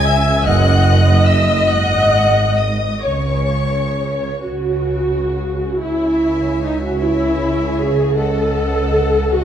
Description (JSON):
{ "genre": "classical, slow romantic movement for string orchestra", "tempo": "41-53 BPM (dotted quarters)", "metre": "6/8", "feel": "rubato", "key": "C# minor", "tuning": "A4 = 440 Hz", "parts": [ { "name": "warm studio violin section", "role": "melody", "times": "0.0-9.4 s", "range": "G#5 to G#6", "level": "-28 LUFS", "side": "left 5 dB", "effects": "none" }, { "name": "warm studio violin section", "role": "second line", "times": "0.0-9.4 s", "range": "C#5 to G#5", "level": "-24 LUFS", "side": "left 4 dB", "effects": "none" }, { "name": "warm studio viola section", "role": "accompaniment", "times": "0.0-9.4 s", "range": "D#4 to E5", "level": "-17 LUFS", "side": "equal", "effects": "none" }, { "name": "rich studio double bass section", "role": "bass", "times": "0.0-9.4 s", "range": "F#1 to C#2", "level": "-20 LUFS", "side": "right 1 dB", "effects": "none" }, { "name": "warm studio cello section", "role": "bass", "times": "0.0-9.4 s", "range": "F#2 to C#3", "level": "-20 LUFS", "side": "right 1 dB", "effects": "none" } ], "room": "moderate scoring stage reverb, RT60 1.8 s", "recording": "dark, warm production", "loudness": "-14 LUFS", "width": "side -9 dB against mid", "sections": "0.0-5.8 A section; 5.8-9.4 B section", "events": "none", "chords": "0.5 D#m/F#; 1.7 G#5; 3.0 C#sus4; 5.8 C#m; 8.2 D#m7b5/C#" }